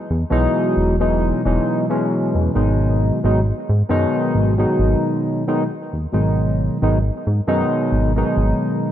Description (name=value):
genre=vaporwave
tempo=67 BPM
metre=4/4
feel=swing 54% on 16ths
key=G# minor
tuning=A4 = 440 Hz
part: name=chorused synth bass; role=bass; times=0.1-8.5 s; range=E1 to G#2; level=-19 LUFS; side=equal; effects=tube saturation
part: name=barky tine electric piano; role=accompaniment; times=0.3-8.9 s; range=B2 to D#4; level=-18 LUFS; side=equal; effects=overdrive, analog chorus, vintage 12-bit sampler grit, tape echo
room=moderate plate reverb, RT60 2.7 s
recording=dark, warm production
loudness=-16 LUFS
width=side -11 dB against mid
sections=0.0-8.9 A section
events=none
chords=0.0 Emaj9; 2.6 G#m7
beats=0.77 1.66 | 2.56 3.45 4.35 5.24 | 6.14 7.03 7.93 8.82